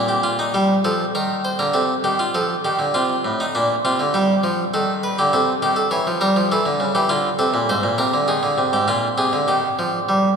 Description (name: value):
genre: classical, baroque-style two-part invention for harpsichord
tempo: 101 BPM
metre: 3/4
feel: straight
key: unclear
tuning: A4 = 436 Hz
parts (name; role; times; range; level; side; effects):
- harpsichord; solo; 0.0-10.4 s; Ab2 to C#5; -17 LUFS; equal; none
room: wet cathedral reverb, RT60 5.0 s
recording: recorded in a church or concert hall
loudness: -17 LUFS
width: side -6 dB against mid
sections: 0.5-10.4 A section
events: none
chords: 0.0 Bb5; 0.5 Gm; 1.8 Cm; 2.4 F7; 3.5 Bb; 4.1 G7(no3); 5.3 Cm; 5.9 A7/E; 7.1 Dm; 7.7 Abadd9(#11); 8.9 Bb7; 9.5 Eb